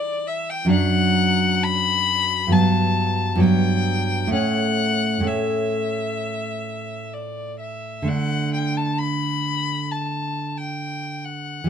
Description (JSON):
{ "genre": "romantic duo for violin and classical guitar", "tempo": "63-69 BPM", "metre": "4/4", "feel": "rubato", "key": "D major", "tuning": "A4 = 440 Hz", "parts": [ { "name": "rich violin", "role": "melody", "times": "0.0-11.7 s", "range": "D5 to B5", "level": "-24 LUFS", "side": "left 5 dB", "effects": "none" }, { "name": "nylon-string guitar", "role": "accompaniment", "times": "0.0-11.7 s", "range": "F#2 to D4", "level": "-22 LUFS", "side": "right 2 dB", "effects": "none" } ], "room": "light reverb", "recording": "minimal, uncompressed stereo recording", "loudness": "-19 LUFS", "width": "side -8 dB against mid", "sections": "0.0-11.7 A section", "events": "none", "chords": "0.0 Em13; 0.7 D/F#; 2.5 Gmaj7; 4.3 A; 8.1 D5" }